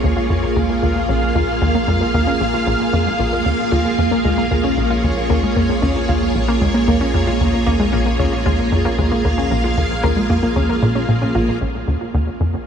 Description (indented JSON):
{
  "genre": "ambient, sequencer-driven space music",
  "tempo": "114 BPM",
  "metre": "4/4",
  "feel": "straight",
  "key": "Bb minor",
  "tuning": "A4 = 440 Hz",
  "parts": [
    { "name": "string machine, full ensemble", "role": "sustained chords", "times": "0.0-12.7 s", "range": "Bb3 to F5", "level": "-19 LUFS", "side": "right 1 dB", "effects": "ensemble chorus" },
    { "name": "tight sequencer bass", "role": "riff", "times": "0.0-12.6 s", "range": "Bb1 to Bb2", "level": "-20 LUFS", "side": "equal", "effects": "ensemble chorus, tape echo" },
    { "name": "warm sub bass", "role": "bass", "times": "0.0-12.7 s", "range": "Bb1", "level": "-26 LUFS", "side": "equal", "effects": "none" },
    { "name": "wide unison pluck", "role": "arpeggios", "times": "0.2-11.4 s", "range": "Ab3 to F4", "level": "-22 LUFS", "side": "left 1 dB", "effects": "auto-pan, tape echo" }
  ],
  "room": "moderate huge ambient reverb, RT60 7.9 s",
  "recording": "none",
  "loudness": "-15 LUFS",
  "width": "side -8 dB against mid",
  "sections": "0.0-11.6 A section; 11.6-12.7 B section",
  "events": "filter sweep on analog synth bass 0.0-11.6",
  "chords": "0.0 Bbm7"
}